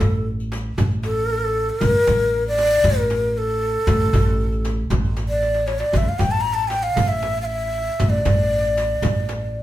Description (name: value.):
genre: Arabic maqam ensemble.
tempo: 116 BPM.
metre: 4/4.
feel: straight.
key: A maqam hijaz.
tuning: A4 = 441 Hz.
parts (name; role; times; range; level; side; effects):
breathy ney; melody; 0.0-9.6 s; A4 to Bb5+22c; -20 LUFS; left 1 dB; none.
upright bass; bass; 0.0-9.6 s; A1; -23 LUFS; equal; none.
darbuka; percussion; 0.0-9.6 s; none; -25 LUFS; equal; none.
frame drum; percussion; 0.0-9.4 s; none; -28 LUFS; right 1 dB; none.
riq; percussion; 0.0-9.4 s; none; -33 LUFS; left 4 dB; none.
room: wet studio reverb, RT60 0.8 s.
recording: band playing live in one room.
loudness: -18 LUFS.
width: side -14 dB against mid.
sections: 0.0-9.6 A section.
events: drum fill 5.4-5.9.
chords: none.